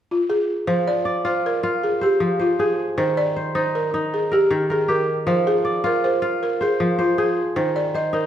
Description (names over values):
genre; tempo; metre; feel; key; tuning
west african traditional, West African string and xylophone music; 105 BPM (dotted quarters); 12/8; straight; F dorian; A4 = 441 Hz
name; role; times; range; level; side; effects
balafon; melody; 0.1-8.3 s; F4 to Eb5; -20 LUFS; equal; tape echo
kora; arpeggios; 0.7-8.3 s; Eb3 to D5; -22 LUFS; left 1 dB; none
room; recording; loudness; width
wet recital hall reverb, RT60 1.6 s; none; -18 LUFS; side -10 dB against mid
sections
0.7-8.3 A section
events
none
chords
0.0 N.C.; 0.7 Fm; 3.0 Eb; 5.3 Fm; 7.6 N.C.